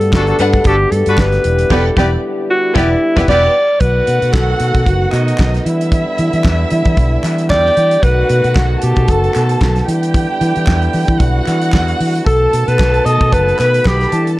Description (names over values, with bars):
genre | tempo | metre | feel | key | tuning
disco | 114 BPM | 4/4 | swing 56% on 16ths | E minor | A4 = 440 Hz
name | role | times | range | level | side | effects
breathy alto saxophone | melody | 0.0-14.3 s | E4 to D#5 | -15 LUFS | equal | none
mellow French horn section | sustained chords | 0.0-14.4 s | D3 to G4 | -22 LUFS | equal | none
fingered electric bass | bass | 0.0-14.4 s | E1 to E3 | -15 LUFS | equal | none
damped 70s drum kit | drums | 0.0-14.4 s | crash cymbal, hi-hat, kick drum, snare drum | -17 LUFS | equal | none
clear horn section | stabs | 0.1-3.4 s | D4 to B4 | -21 LUFS | left 2 dB | none
group handclap | percussion | 0.1-14.0 s | none | -30 LUFS | left 1 dB | none
warm studio violin section | second line | 0.4-14.4 s | B3 to B5 | -20 LUFS | right 1 dB | none
room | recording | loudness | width
studio ambience | dark, warm production | -11 LUFS | side -17 dB against mid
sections
0.0-3.8 A section; 3.8-14.4 B section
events
band accent 1.7-3.8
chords
0.0 Gmaj9; 1.4 Em7; 3.8 B7; 5.7 Em7; 8.0 B7; 9.9 Em9; 12.3 B7